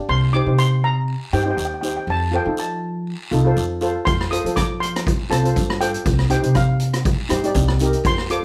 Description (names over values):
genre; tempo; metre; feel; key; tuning
calypso; 121 BPM; 4/4; swing 54% on 16ths; unclear; A4 = 440 Hz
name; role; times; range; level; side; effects
steel pan; accompaniment; 0.0-8.4 s; Eb4 to D5; -26 LUFS; equal; none
steel pan; melody; 0.1-8.4 s; F5 to Eb6; -27 LUFS; equal; none
upright bass; bass; 0.1-8.3 s; C2 to F3; -23 LUFS; equal; none
guiro; percussion; 0.1-8.4 s; none; -38 LUFS; equal; none
street-band drum kit; drums; 4.1-8.4 s; hi-hat, kick drum, rim click; -24 LUFS; equal; none
room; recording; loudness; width
moderate studio reverb, RT60 0.6 s; none; -20 LUFS; mono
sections
0.0-8.4 A section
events
none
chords
0.1 Cm; 2.1 F7; 6.1 Cm